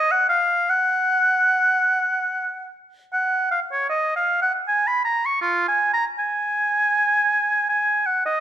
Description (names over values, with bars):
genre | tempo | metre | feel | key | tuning
classical, baroque-style fantasia for unaccompanied oboe | 72-82 BPM | 3/4 | rubato | F# major | A4 = 440 Hz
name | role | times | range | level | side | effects
clear oboe | solo | 0.0-8.4 s | E#4 to C#6 | -18 LUFS | right 1 dB | none
room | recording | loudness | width
moderate recital hall reverb, RT60 1.4 s | minimal, uncompressed stereo recording | -18 LUFS | side -11 dB against mid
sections
0.0-3.1 A section; 3.1-8.4 B section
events
none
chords
none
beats
| 0.68 1.50 2.31 | 3.13 3.90 4.65 | 5.42 6.18 6.94 | 7.69